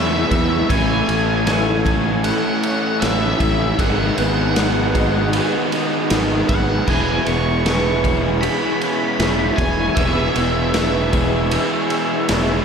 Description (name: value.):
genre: rock, shoegaze and dream pop.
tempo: 78 BPM.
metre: 4/4.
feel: straight.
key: E major.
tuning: A4 = 440 Hz.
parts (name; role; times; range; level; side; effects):
octave-fuzz lead guitar; melody; 0.0-12.2 s; E5 to C#6; -24 LUFS; equal; distortion, diffuse ambient delay.
chorused pulse-width pad; sustained chords; 0.0-12.6 s; E4 to D#6; -28 LUFS; left 1 dB; none.
fingerpicked twelve-string acoustic guitar; arpeggios; 0.0-12.6 s; D#3 to G#4; -27 LUFS; right 1 dB; lush chorus, diffuse ambient delay.
raw garage guitar; riff; 0.0-12.6 s; E2 to A4; -24 LUFS; left 11 dB; overdrive, ensemble chorus.
raw garage guitar; riff; 0.0-12.6 s; G#2 to E4; -23 LUFS; right 10 dB; overdrive, reverse reverb.
fuzz fingered electric bass; bass; 0.0-12.6 s; E1 to E2; -22 LUFS; equal; overdrive.
raw garage drum kit; drums; 0.3-12.5 s; crash cymbal, kick drum, ride cymbal, snare drum; -22 LUFS; equal; none.
room: moderate plate reverb, RT60 2.8 s.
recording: dreamy mix soaked in reverb.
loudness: -16 LUFS.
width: side -6 dB against mid.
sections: 0.0-12.6 A section.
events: none.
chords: 0.0 E6; 0.7 Amaj7; 3.8 G#m7; 6.9 E6.